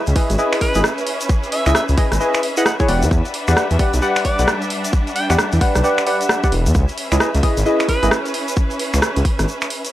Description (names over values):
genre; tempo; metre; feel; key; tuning
UK garage, two-step garage; 132 BPM; 4/4; swing 62% on 16ths; C# minor; A4 = 440 Hz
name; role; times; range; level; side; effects
rich studio violin section; sustained chords; 0.0-9.9 s; C#4 to F#5; -31 LUFS; left 1 dB; sidechain pumping
deep mellow chord stab; stabs; 0.0-8.1 s; E4 to F#5; -20 LUFS; equal; chorus, analog delay
dark studio string section; texture; 0.0-9.9 s; G3 to E5; -26 LUFS; right 1 dB; sidechain pumping
dark detuned saw bass; bass; 0.1-9.5 s; E1 to E2; -17 LUFS; equal; none
punchy analog drum machine; drums; 0.1-9.9 s; finger snaps, hi-hat, rim click; -22 LUFS; equal; none
tube shaker; percussion; 0.1-9.9 s; none; -31 LUFS; left 2 dB; none
electronic kick drum; drums; 0.2-9.4 s; none; -18 LUFS; equal; overdrive
raspy alto saxophone; melody; 0.6-8.1 s; B4 to G5; -25 LUFS; equal; analog delay
room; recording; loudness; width
small room ambience; dry, gritty hardware recording; -15 LUFS; side -14 dB against mid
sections
0.0-9.9 A section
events
none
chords
0.0 C#m7; 2.9 Em7; 6.7 C#m7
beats
0.39 0.84 | 1.29 1.75 2.20 2.66 | 3.11 3.57 4.02 4.48 | 4.93 5.38 5.84 6.29 | 6.75 7.20 7.66 8.11 | 8.57 9.02 9.48